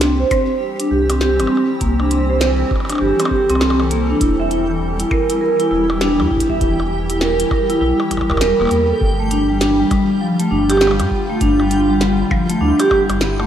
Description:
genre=IDM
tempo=100 BPM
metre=4/4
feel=swing 62% on 16ths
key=C major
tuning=A4 = 440 Hz
part: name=granular cloud pad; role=sustained chords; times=0.0-13.5 s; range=D3 to A4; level=-24 LUFS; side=equal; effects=built-in reverb, sidechain pumping
part: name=vibraphone with medium mallets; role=arpeggios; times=0.0-13.5 s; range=F3 to E5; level=-16 LUFS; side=right 1 dB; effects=low-pass filter, digital delay
part: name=round analog bass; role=bass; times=0.0-13.5 s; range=E1 to G2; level=-20 LUFS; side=equal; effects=none
part: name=glitchy drum kit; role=drums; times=0.0-13.5 s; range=hi-hat, percussion blips, snare drum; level=-24 LUFS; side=equal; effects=studio reverb
part: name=backwards swelling texture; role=texture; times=1.3-13.5 s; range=G5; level=-33 LUFS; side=right 1 dB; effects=built-in reverb
part: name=electronic kick drum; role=drums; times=0.3-13.1 s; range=none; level=-21 LUFS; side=equal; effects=overdrive, studio reverb
room=moderate plate reverb, RT60 3.3 s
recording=rough home demo mix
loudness=-14 LUFS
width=side -10 dB against mid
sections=0.0-13.5 A section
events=filter sweep on vibraphone 0.0-13.5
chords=0.0 C; 4.2 Em; 9.0 G5

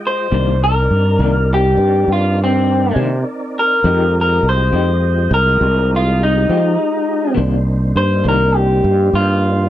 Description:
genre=slow blues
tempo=68 BPM (dotted quarters)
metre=12/8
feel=straight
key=C minor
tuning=A4 = 437 Hz
part: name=tonewheel organ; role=sustained chords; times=0.0-9.7 s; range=Ab3 to G5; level=-25 LUFS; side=right 1 dB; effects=slow rotary speaker, overdrive, chorus vibrato
part: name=electric guitar through a small old amp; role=melody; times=0.1-9.7 s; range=C4 to C5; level=-16 LUFS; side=left 1 dB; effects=none
part: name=electric guitar through a small old amp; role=accompaniment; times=0.3-8.4 s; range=C3 to G4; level=-22 LUFS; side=left 5 dB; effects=tremolo
part: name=sustaining fretless electric bass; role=bass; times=0.3-9.7 s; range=C2 to F3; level=-15 LUFS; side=equal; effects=none
room=light reverb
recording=dark, warm production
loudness=-12 LUFS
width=side -12 dB against mid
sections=0.0-9.7 A section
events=clean electric guitar solo 0.0-9.7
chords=0.3 Cm9; 3.8 Fm9; 7.4 Cm9

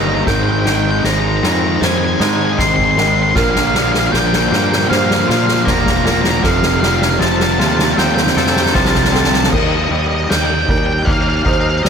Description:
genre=post-rock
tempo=78 BPM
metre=4/4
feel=straight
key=Bb major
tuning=A4 = 439 Hz
part: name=octave-fuzz lead guitar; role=melody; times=0.0-11.9 s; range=Eb5 to C6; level=-19 LUFS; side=left 1 dB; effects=distortion, digital delay
part: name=felt-muted upright piano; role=arpeggios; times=0.0-11.9 s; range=A4 to C5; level=-27 LUFS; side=right 3 dB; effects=digital delay
part: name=twangy electric guitar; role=arpeggios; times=0.0-11.9 s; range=Ab2 to A4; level=-24 LUFS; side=left 4 dB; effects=tremolo, digital delay
part: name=overdriven semi-hollow guitar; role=riff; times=0.0-9.5 s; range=F2 to Eb4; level=-20 LUFS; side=right 13 dB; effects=none
part: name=sludgy distorted guitar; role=riff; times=0.0-9.5 s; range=F2 to Eb4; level=-20 LUFS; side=left 12 dB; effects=overdrive
part: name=fuzz fingered electric bass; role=bass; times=0.0-11.9 s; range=E1 to Bb2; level=-19 LUFS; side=equal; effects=overdrive
part: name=soft-mallet drum kit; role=drums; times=0.3-11.9 s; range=crash cymbal, kick drum, snare drum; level=-17 LUFS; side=equal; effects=none
room=light reverb, studio reverb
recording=none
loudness=-12 LUFS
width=side -6 dB against mid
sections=0.0-9.5 A section; 9.5-11.9 B section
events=build-up 0.0-9.5; drum fill 0.0-9.5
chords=0.3 Abmaj7; 3.4 Bb; 6.4 Fadd9; 9.5 Eb

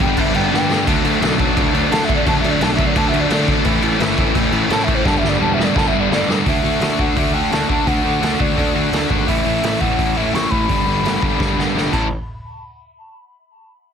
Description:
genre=punk rock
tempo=171 BPM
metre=4/4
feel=straight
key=unclear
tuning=A4 = 440 Hz
part: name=mellow hollow alto ocarina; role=melody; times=0.0-12.1 s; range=C5 to C#6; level=-24 LUFS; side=equal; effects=tape echo
part: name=crunchy overdriven guitar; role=riff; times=0.0-12.1 s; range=G2 to D4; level=-21 LUFS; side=right 14 dB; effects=none
part: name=distorted electric guitar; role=riff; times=0.0-12.1 s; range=G2 to F#4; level=-20 LUFS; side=left 16 dB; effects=distortion
part: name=fuzz picked electric bass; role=bass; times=0.0-12.1 s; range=E1 to D3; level=-24 LUFS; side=equal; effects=overdrive
part: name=raw garage drum kit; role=drums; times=0.0-12.0 s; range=crash cymbal, hi-hat, kick drum, snare drum, splash cymbal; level=-20 LUFS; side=equal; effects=none
room=little or no reverb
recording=dense, heavily limited modern master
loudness=-14 LUFS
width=side -7 dB against mid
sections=0.0-6.5 A section; 6.5-12.1 B section; 12.1-13.5 C section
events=drum fill 0.5-0.9, 5.1-6.5, 11.4-12.1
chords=0.0 G; 0.9 D; 3.7 A; 5.1 G; 6.5 D; 9.3 A; 10.7 G; 11.9 A; 12.1 N.C.

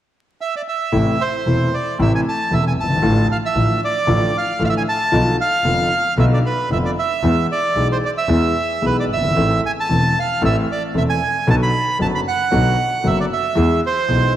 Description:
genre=tango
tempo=114 BPM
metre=4/4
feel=rubato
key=A harmonic minor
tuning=A4 = 440 Hz
part: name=bandoneon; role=melody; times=0.4-14.3 s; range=B4 to B5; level=-19 LUFS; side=right 3 dB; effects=none
part: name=warm grand piano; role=accompaniment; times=0.9-14.3 s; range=E1 to A4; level=-20 LUFS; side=left 2 dB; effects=none
part: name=bright double bass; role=bass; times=0.9-14.3 s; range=E1 to E2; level=-21 LUFS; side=right 1 dB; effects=none
room=moderate lush hall reverb, RT60 2.8 s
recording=dreamy mix soaked in reverb, vinyl crackle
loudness=-15 LUFS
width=side -12 dB against mid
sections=0.9-14.4 A section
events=none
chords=0.0 N.C.; 0.9 Am; 3.0 Dm/A; 5.1 Bdim; 7.2 E; 9.4 Am; 11.5 Bm; 13.6 E

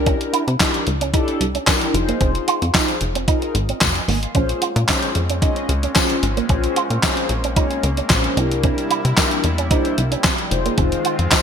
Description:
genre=early-eighties boogie funk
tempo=112 BPM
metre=4/4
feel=straight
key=Bb minor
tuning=A4 = 439 Hz
part: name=mellow synth brass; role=accompaniment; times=0.0-11.4 s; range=Db4 to C6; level=-23 LUFS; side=left 2 dB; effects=chorus, phaser
part: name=plucky analog bass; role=bass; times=0.0-11.3 s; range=F1 to C3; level=-21 LUFS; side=equal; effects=none
part: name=electric guitar with an envelope filter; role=riff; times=0.1-11.4 s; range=Bb3 to F4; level=-25 LUFS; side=right 8 dB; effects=ensemble chorus
part: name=clean 12-bit digital drum machine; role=drums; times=0.1-11.4 s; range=handclaps, hi-hat, kick drum, snare drum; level=-19 LUFS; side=equal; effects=gated reverb
part: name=tambourine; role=percussion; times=0.6-11.4 s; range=none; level=-27 LUFS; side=left 12 dB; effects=none
part: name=chorused pulse-width pad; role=sustained chords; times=4.3-11.4 s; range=C3 to F4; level=-29 LUFS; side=left 1 dB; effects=none
room=moderate lush hall reverb, RT60 1.9 s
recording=bright 1980s-style digital production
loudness=-16 LUFS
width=side -7 dB against mid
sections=0.0-11.4 A section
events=none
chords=0.0 C7; 1.9 Fm7; 4.3 Bbm9; 8.4 C7; 10.5 Fm7

